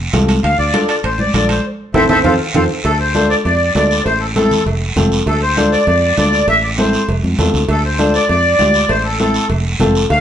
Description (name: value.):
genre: latin, cumbia.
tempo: 199 BPM.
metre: 4/4.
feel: straight.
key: unclear.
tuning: A4 = 440 Hz.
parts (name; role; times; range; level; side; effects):
fingered electric bass; bass; 0.0-10.2 s; F1 to F2; -18 LUFS; equal; none.
dark upright piano; accompaniment; 0.1-10.0 s; C4 to A4; -18 LUFS; left 2 dB; none.
congas; percussion; 0.1-9.9 s; none; -20 LUFS; equal; none.
guiro; percussion; 0.1-10.2 s; none; -25 LUFS; right 4 dB; none.
timbales and cowbell; percussion; 0.1-10.2 s; none; -24 LUFS; right 5 dB; none.
accordion; melody; 0.4-10.2 s; A4 to F5; -15 LUFS; left 1 dB; light tremolo tuning.
room: wet large studio reverb, RT60 0.9 s.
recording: band playing live in one room, nothing above 10.8 kHz.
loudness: -12 LUFS.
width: side -9 dB against mid.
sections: 0.0-2.9 A section; 2.9-10.2 B section.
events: drum fill 1.6-2.9; band accent 1.6-2.9.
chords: 0.4 Dm; 1.6 Am; 2.2 F; 2.9 Dm; 4.1 Am; 4.7 F; 5.3 Dm; 6.5 Am; 7.1 F; 7.7 Dm; 8.9 Am; 9.5 F.